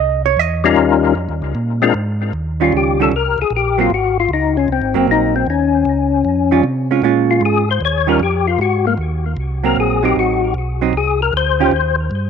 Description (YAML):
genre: soul jazz organ trio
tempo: 154 BPM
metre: 4/4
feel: swing 66% on 8ths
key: unclear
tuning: A4 = 442 Hz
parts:
  - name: hollow-body jazz guitar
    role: accompaniment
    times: 0.0-11.7 s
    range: Eb3 to Eb5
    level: -16 LUFS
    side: right 12 dB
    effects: none
  - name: mellow tonewheel organ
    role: bass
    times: 0.0-12.3 s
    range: Gb1 to C3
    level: -20 LUFS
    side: right 1 dB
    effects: slow rotary speaker
  - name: percussive tonewheel organ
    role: melody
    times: 0.6-12.0 s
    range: G3 to Db5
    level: -16 LUFS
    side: left 8 dB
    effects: slow rotary speaker, chorus vibrato, tape echo
room: moderate spring reverb, RT60 1.2 s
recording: 1960s-style stereo with parts hard left and right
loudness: -13 LUFS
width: side -7 dB against mid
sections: 0.0-2.3 A section; 2.3-12.3 A section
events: hollow-body jazz guitar solo 0.0-2.3; tonewheel organ solo 2.3-12.3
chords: 0.0 C7#9; 0.8 Eb9; 1.6 Bb9; 2.3 Eb9; 3.9 Ab9; 5.5 Eb7sus2; 7.0 Bbm7; 7.8 Eb9; 8.6 Ab9; 10.2 Adim7; 11.7 Eb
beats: 0.38 | 0.77 1.16 1.55 1.95 | 2.34 2.73 3.12 3.51 | 3.90 4.30 4.69 5.08 | 5.47 5.86 6.25 6.64 | 7.03 7.42 7.81 8.20 | 8.60 8.98 9.38 9.77 | 10.16 10.55 10.94 11.33 | 11.72 12.11